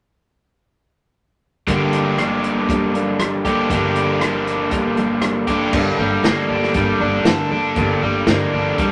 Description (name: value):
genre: folk rock and heartland rock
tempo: 118 BPM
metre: 4/4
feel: straight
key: G minor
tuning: A4 = 440 Hz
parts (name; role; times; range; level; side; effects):
- picked steel-string acoustic guitar; accompaniment; 1.7-8.9 s; G2 to A4; -24 LUFS; equal; none
- overdriven electric guitar; riff; 1.7-8.9 s; G2 to A4; -21 LUFS; equal; none
- upright bass; bass; 1.7-8.9 s; G1 to G2; -31 LUFS; equal; none
- natural country drum kit; drums; 1.7-8.9 s; crash cymbal, hi-hat, kick drum, rim click, snare drum; -24 LUFS; equal; none
room: wet studio reverb, RT60 0.6 s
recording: none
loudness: -18 LUFS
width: mono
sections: 1.7-5.7 A section; 5.7-8.9 B section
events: none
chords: 1.7 Gmadd9